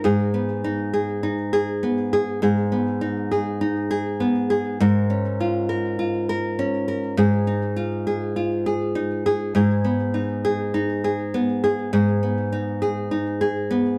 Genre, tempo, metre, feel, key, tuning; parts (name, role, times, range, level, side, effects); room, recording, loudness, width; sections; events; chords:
folktronica; 101 BPM; 4/4; straight; G# dorian; A4 = 435 Hz
nylon-string guitar; solo; 0.0-14.0 s; G#2 to A#4; -23 LUFS; equal
moderate studio ambience, RT60 0.5 s; dark, warm production; -23 LUFS; mono
0.0-14.0 A section
0.1 G#m; 4.8 A#m7/G#; 7.2 D#sus2/G#; 9.6 G#m